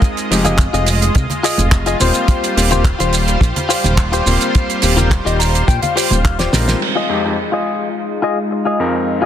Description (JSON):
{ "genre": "nu-disco, nu disco", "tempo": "106 BPM", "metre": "4/4", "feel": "straight", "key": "F minor", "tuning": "A4 = 440 Hz", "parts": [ { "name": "warm electric grand piano", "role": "accompaniment", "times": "0.0-9.3 s", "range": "F2 to C5", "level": "-22 LUFS", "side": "left 2 dB", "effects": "sidechain pumping, low-pass filter, ping-pong delay" }, { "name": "lush unison pad", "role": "sustained chords", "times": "0.0-9.3 s", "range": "G3 to Eb5", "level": "-21 LUFS", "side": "equal", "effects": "chorus, sidechain pumping" }, { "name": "direct-recorded clean electric guitar", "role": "riff", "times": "0.0-9.3 s", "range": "F4 to Bb5", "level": "-20 LUFS", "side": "left 4 dB", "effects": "wide subtle chorus, low-pass filter, ping-pong delay" }, { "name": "damped 70s drum kit", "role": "drums", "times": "0.0-6.9 s", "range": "crash cymbal, handclaps, hi-hat, shaker, snare drum", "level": "-20 LUFS", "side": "right 4 dB", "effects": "low-pass filter on hats, low-pass filter on cymbals, low-pass filter on snare, low-pass filter on perc, low-pass filter on room" }, { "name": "kick drum", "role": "drums", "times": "0.0-6.4 s", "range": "none", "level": "-14 LUFS", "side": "equal", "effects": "soft clipping on snare" }, { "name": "fat analog bass", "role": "bass", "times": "0.3-6.8 s", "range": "Eb1 to C2", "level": "-17 LUFS", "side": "equal", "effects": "none" }, { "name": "congas", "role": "percussion", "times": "0.5-6.6 s", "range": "none", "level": "-24 LUFS", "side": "right 1 dB", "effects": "none" } ], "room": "light reverb, studio ambience", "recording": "dense, heavily limited modern master", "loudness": "-13 LUFS", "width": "side -10 dB against mid", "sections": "0.0-6.8 A section; 6.8-9.3 B section", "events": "clean electric guitar fill 5.1-6.8; drum fill 6.4-6.8; band accent 6.7; filter sweep on analog synth pad 6.8-9.3", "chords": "0.0 Fm7; 2.0 Eb69; 6.8 Fm7" }